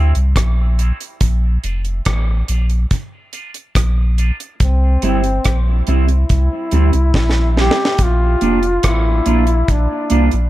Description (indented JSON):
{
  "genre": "dub reggae",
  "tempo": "71 BPM",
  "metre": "4/4",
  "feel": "straight",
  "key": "unclear",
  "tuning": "A4 = 442 Hz",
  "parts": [
    { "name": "mellow electric guitar", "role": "accompaniment", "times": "0.0-10.3 s", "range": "G3 to F4", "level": "-22 LUFS", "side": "right 5 dB", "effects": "high-pass filter, dub echo" },
    { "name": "warm sub bass", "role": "bass", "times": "0.0-10.5 s", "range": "F1 to D2", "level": "-14 LUFS", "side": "equal", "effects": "none" },
    { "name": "deep reggae drum kit", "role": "drums", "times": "0.2-10.5 s", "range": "hi-hat, kick drum, rim click, snare drum", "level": "-19 LUFS", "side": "equal", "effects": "none" },
    { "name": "warm trombone", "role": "melody", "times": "4.6-10.3 s", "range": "C4 to G4", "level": "-20 LUFS", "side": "left 2 dB", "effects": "dub echo" }
  ],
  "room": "light reverb",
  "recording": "echo-heavy mix",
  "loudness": "-13 LUFS",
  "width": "side -15 dB against mid",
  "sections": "0.0-10.5 A section",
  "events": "break 0.0-4.6; filter sweep on clean electric guitar 0.0-4.6; drum fill 7.1-8.0",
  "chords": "0.0 C; 1.2 Bb; 4.6 C; 8.0 Bb"
}